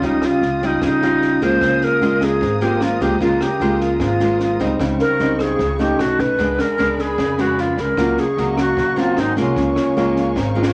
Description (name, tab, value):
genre	bossa nova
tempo	151 BPM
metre	4/4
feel	straight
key	Db lydian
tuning	A4 = 440 Hz
part	bright alto flute	melody	0.0-10.7 s	Db4 to C5	-22 LUFS	equal	none
part	nylon-string guitar	accompaniment	0.0-10.7 s	Ab2 to F4	-22 LUFS	equal	none
part	dark studio string section	sustained chords	0.0-10.7 s	C4 to Eb6	-34 LUFS	equal	none
part	upright bass	bass	0.0-10.7 s	Ab1 to F2	-29 LUFS	equal	none
part	compact cocktail drum kit	drums	0.0-10.7 s	kick drum, rim click, snare drum	-28 LUFS	equal	none
room	moderate club reverb, RT60 0.6 s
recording	none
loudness	-18 LUFS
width	mono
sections	0.0-10.7 A section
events	drum fill 10.4-10.7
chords	0.0 Eb9; 1.6 Db6; 4.8 Eb13/Db; 6.0 Cb9; 6.4 Bb7b9/Db; 8.0 Ebm9/Db; 9.2 Ab9; 9.6 Db6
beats	| 0.03 0.42 0.82 1.22 | 1.62 2.01 2.41 2.81 | 3.21 3.60 4.00 4.40 | 4.79 5.19 5.59 5.99 | 6.38 6.78 7.18 7.58 | 7.97 8.37 8.77 9.17 | 9.56 9.96 10.36